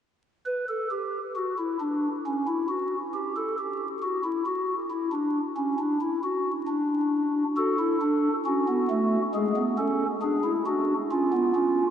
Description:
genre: classical, baroque-style 4-part fugue for pipe organ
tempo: 68 BPM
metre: 4/4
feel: straight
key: unclear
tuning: A4 = 443 Hz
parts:
  - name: pipe organ, stopped flute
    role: solo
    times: 0.5-11.9 s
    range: G#3 to B4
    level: -24 LUFS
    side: equal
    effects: none
room: wet cathedral reverb, RT60 7.6 s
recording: vinyl crackle, nothing above 10.7 kHz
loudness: -24 LUFS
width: side -9 dB against mid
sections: 0.5-11.9 A section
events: none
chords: 0.5 N.C.; 7.6 F#m; 9.3 G#(b5, no3); 11.1 C#7

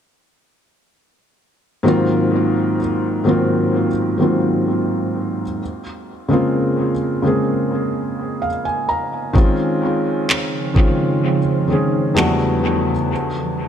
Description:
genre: contemporary R&B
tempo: 64 BPM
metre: 4/4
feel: straight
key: unclear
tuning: A4 = 440 Hz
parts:
  - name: felt-muted upright piano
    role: accompaniment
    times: 1.8-13.1 s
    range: E2 to Bb5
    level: -17 LUFS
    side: equal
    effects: dub echo
  - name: ethereal airy pad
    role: sustained chords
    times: 10.5-13.7 s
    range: Db3 to C5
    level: -22 LUFS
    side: right 3 dB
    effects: ensemble chorus, built-in reverb, phaser
  - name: smooth R&B drum kit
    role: drums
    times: 9.4-12.4 s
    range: handclaps, kick drum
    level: -18 LUFS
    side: equal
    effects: dub echo
room: light reverb, digital ambience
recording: echo-heavy mix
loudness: -16 LUFS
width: side -8 dB against mid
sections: 1.9-13.7 A section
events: felt piano fill 7.9-9.4; break 13.1-13.7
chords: 1.9 Ab13; 5.6 Bbm9; 9.4 Dbmaj9; 12.2 Em11; 13.1 Ebm11

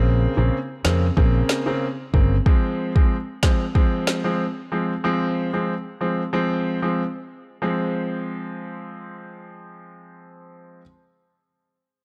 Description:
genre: dancehall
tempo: 93 BPM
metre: 4/4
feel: straight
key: F minor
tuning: A4 = 439 Hz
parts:
  - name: clear concert grand piano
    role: accompaniment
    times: 0.0-10.8 s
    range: Db3 to C4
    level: -26 LUFS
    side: equal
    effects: none
  - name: fretless electric bass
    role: bass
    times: 0.0-2.4 s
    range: G1 to F2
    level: -22 LUFS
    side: equal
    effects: none
  - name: afro-pop drum kit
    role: drums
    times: 0.8-4.2 s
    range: finger snaps, kick drum, snare drum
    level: -21 LUFS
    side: equal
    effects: none
room: little or no reverb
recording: dark, warm production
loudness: -22 LUFS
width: mono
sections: 0.0-7.6 A section; 7.6-10.2 B section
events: none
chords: 0.0 Bbmadd9; 2.5 Fm

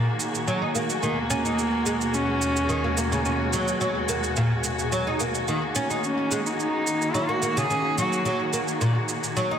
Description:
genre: organic downtempo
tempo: 108 BPM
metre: 4/4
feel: straight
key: Eb minor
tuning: A4 = 440 Hz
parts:
  - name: dark cello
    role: melody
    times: 0.0-8.5 s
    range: Bb3 to Ab4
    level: -27 LUFS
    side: equal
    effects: digital delay
  - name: dark chamber string section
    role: sustained chords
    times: 0.0-9.6 s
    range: Eb2 to Gb4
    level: -29 LUFS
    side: left 2 dB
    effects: none
  - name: oud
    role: arpeggios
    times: 0.0-9.6 s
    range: Bb2 to Eb4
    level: -26 LUFS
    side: equal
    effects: low-pass filter, digital delay
  - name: wind-like tuned noise texture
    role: texture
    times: 0.0-9.6 s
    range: Ab4 to Ab5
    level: -34 LUFS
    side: right 1 dB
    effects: built-in reverb
  - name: shaker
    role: drums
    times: 0.2-9.5 s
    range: none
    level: -32 LUFS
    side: right 6 dB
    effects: overdrive
room: wet echo chamber reverb, RT60 1.9 s, studio reverb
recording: dense, heavily limited modern master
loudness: -22 LUFS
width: side -8 dB against mid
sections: 0.0-9.6 A section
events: none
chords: 0.0 Ebm; 1.0 Abm7/Eb; 5.5 Ebm

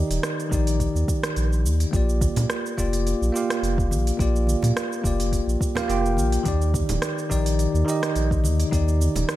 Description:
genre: sunset chillout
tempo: 106 BPM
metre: 4/4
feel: swing 54% on 16ths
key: Bb major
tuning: A4 = 440 Hz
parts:
  - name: bell-like tine electric piano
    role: accompaniment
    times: 0.0-9.4 s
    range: Eb3 to G5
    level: -25 LUFS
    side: moving between left 4 dB and right 4 dB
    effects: auto-pan, tape echo
  - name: warm sub bass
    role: bass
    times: 0.0-9.2 s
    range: Eb1 to Bb2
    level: -22 LUFS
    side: equal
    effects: tube saturation
  - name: smooth R&B drum kit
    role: drums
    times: 0.1-9.4 s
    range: cabasa, hi-hat, rim click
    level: -31 LUFS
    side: right 1 dB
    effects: none
  - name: electronic kick drum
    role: drums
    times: 0.5-8.8 s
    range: none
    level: -26 LUFS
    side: equal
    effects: none
  - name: congas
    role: percussion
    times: 2.2-9.3 s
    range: none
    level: -32 LUFS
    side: right 1 dB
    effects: none
room: little or no reverb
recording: none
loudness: -20 LUFS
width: side -14 dB against mid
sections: 0.0-9.4 A section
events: none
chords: 0.0 Ebmaj7; 1.9 Bb6; 6.5 Ebmaj7

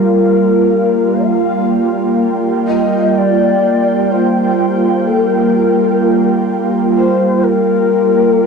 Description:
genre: ambient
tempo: free time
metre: none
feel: none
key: G minor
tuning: A4 = 438 Hz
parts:
  - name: breathy mellow shakuhachi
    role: melody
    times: 0.0-8.5 s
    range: Bb4 to F5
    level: -15 LUFS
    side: left 7 dB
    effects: cassette tape, analog delay
  - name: ethereal airy pad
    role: sustained chords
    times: 0.0-8.5 s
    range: G3 to G5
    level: -12 LUFS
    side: right 3 dB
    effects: ensemble chorus, built-in reverb, plate reverb
  - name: bell-like tine electric piano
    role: arpeggios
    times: 0.0-2.4 s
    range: none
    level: barely audible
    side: none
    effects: none
room: wet small room ambience, RT60 0.5 s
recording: home recording on cassette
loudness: -11 LUFS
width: side -5 dB against mid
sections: 0.0-8.5 A section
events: none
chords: 0.0 Gm7

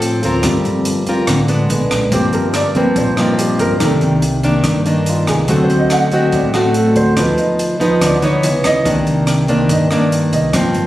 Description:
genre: bossa nova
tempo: 143 BPM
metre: 4/4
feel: straight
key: unclear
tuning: A4 = 440 Hz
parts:
  - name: nylon-string guitar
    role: accompaniment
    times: 0.0-10.9 s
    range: G2 to Bb4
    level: -15 LUFS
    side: left 1 dB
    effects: none
  - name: warm grand piano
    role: accompaniment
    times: 0.0-10.9 s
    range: D3 to F#5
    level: -18 LUFS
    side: right 1 dB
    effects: none
  - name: upright bass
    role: bass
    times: 0.0-10.9 s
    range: G1 to G2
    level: -22 LUFS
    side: equal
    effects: none
  - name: compact cocktail drum kit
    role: drums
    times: 0.0-10.8 s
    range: hi-hat, kick drum, rim click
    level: -23 LUFS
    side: equal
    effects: none
room: moderate studio reverb, RT60 0.9 s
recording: recorded on a phone in the room, studio reverb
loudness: -12 LUFS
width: side -14 dB against mid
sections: 0.0-10.9 A section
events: grand piano solo 0.0-10.9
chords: 0.4 Gm11; 1.7 Bb7b9; 2.1 Ebmaj13/G; 3.8 Cm9; 5.5 D7; 7.2 Dm69; 8.4 C#m9; 8.9 Cm9

